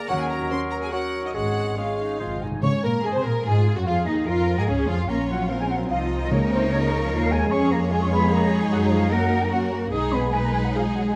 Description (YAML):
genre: quick classical-period movement for symphony orchestra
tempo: 138-152 BPM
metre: 3/4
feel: rubato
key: Db major, F# major from 7.5 s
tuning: A4 = 440 Hz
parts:
  - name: clear studio violin section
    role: melody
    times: 0.0-11.2 s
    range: Db4 to C6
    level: -37 LUFS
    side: equal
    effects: none
  - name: bright clarinet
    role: second line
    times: 0.0-2.3 s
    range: Ab4 to Bb4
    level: -37 LUFS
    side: equal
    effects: none
  - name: clear oboe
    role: second line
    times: 0.0-2.4 s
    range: C5 to Db5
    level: -37 LUFS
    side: equal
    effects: none
  - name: mellow flute section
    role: second line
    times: 0.0-11.2 s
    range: C5 to D#6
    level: -32 LUFS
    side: equal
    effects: none
  - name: rich studio violin section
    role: second line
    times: 0.0-11.2 s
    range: Db4 to Db5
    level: -35 LUFS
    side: equal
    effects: none
  - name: mellow French horn section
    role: sustained chords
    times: 0.0-11.1 s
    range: C3 to Ab4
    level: -31 LUFS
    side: equal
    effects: none
  - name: warm bassoon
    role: accompaniment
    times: 0.1-2.4 s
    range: Gb3 to Ab3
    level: -33 LUFS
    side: equal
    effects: none
  - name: rich studio cello section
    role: bass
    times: 0.1-11.2 s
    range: Ab2 to B4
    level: -33 LUFS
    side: equal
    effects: none
  - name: rich studio double bass section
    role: bass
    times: 0.1-11.1 s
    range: Ab1 to Db3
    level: -28 LUFS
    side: equal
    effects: none
  - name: warm studio viola section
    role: accompaniment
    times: 0.5-11.2 s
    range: G#3 to Db5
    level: -30 LUFS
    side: equal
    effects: none
  - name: timpani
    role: percussion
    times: 2.2-3.2, 6.3-6.9 s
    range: Ab2 to Db3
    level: -30 LUFS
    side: equal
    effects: none
room: moderate scoring stage reverb, RT60 1.8 s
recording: close, detailed microphones, vinyl crackle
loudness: -23 LUFS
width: mono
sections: 0.0-2.6 A section; 2.6-11.2 B section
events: timpani fill 2.2-2.6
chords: 0.1 Ebm7; 1.4 Db/Ab; 2.2 Ab; 2.6 Db; 5.1 Bbm; 6.3 Bbm/Db; 7.5 C#/E#; 8.7 F#; 9.9 G#m/B